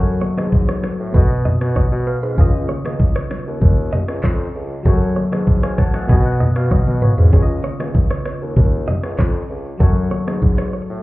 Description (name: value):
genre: afrobeats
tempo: 97 BPM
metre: 4/4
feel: straight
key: Db mixolydian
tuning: A4 = 440 Hz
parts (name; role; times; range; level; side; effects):
- barking FM electric piano; accompaniment; 0.0-11.0 s; Cb3 to A5; -22 LUFS; left 1 dB; chorus
- warm bassoon; bass; 0.0-11.0 s; Db2 to Cb3; -25 LUFS; equal; none
- afro-pop drum kit; drums; 0.1-11.0 s; handclaps, kick drum, rim click, shaker, toms; -15 LUFS; equal; none
- direct-recorded clean electric guitar; riff; 0.2-10.8 s; Ab4 to Eb5; -30 LUFS; right 5 dB; ping-pong delay
- bongos and congas; percussion; 0.2-10.6 s; none; -22 LUFS; equal; none
room: digital ambience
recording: heard muffled through a wall, club reverb, EQ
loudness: -15 LUFS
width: side -19 dB against mid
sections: 0.0-7.3 A section; 7.3-11.0 B section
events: FM electric piano fill 1.5-2.4, 5.5-7.3; drum fill 6.7-7.3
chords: 0.0 Gbm; 1.1 Cb; 2.4 Dbadd9; 4.9 Gbm; 6.1 Cb; 7.3 Dbadd9; 9.8 Gbm